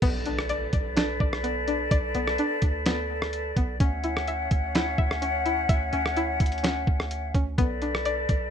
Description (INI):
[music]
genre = hip hop, atmospheric cloud-rap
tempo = 127 BPM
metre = 4/4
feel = half-time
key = B minor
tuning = A4 = 440 Hz
[part]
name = flute section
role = sustained chords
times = 0.0-8.5 s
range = C#4 to F#5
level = -29 LUFS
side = left 2 dB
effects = sidechain pumping
[part]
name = string-like resonator pluck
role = arpeggios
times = 0.0-8.5 s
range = B3 to E5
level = -31 LUFS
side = left 2 dB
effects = chorus, low-pass filter, ping-pong delay
[part]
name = warm 808-style bass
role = bass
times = 0.0-8.5 s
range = B1 to D2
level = -32 LUFS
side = right 1 dB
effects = none
[part]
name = lo-fi sampler-style drum kit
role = drums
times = 0.0-8.4 s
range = crash cymbal, hi-hat, kick drum, rim click, snare drum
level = -26 LUFS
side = right 1 dB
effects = vintage 12-bit sampler grit
[part]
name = impact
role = sound effects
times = 0.0-1.9 s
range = none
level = -41 LUFS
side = right 1 dB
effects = none
[sound]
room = light reverb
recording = rough home demo mix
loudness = -24 LUFS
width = side -8 dB against mid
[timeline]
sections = 0.0-8.5 A section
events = impact 0.0-1.9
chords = 0.0 Bm7; 3.8 Dmaj9; 7.6 Bm7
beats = | 0.02 0.49 0.97 1.44 | 1.91 2.38 2.86 3.33 | 3.80 4.27 4.75 5.22 | 5.69 6.16 6.64 7.11 | 7.58 8.05